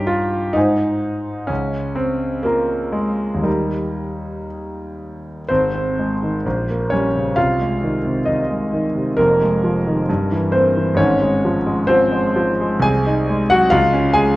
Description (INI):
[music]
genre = classical, romantic character piece for solo piano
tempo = 58-70 BPM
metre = 2/4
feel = rubato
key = Ab major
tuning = A4 = 440 Hz
[part]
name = warm concert grand piano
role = solo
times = 0.0-14.4 s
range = F1 to Bb5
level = -16 LUFS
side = equal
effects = none
[sound]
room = wet recital hall reverb, RT60 1.5 s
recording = worn, warbling old tape, cassette tape, warbly pitch drift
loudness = -16 LUFS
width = side -18 dB against mid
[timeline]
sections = 0.0-5.5 A section; 5.5-14.4 B section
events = none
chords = 0.0 Eb7/G; 0.6 Ab; 1.5 Bbm/Db; 3.5 Eb; 5.5 Ab; 6.5 Gdim/Bb; 7.4 Ab/C; 9.2 Fm7; 10.1 Edim/G; 11.0 Fm/Ab; 12.8 Ab7/C; 13.7 Db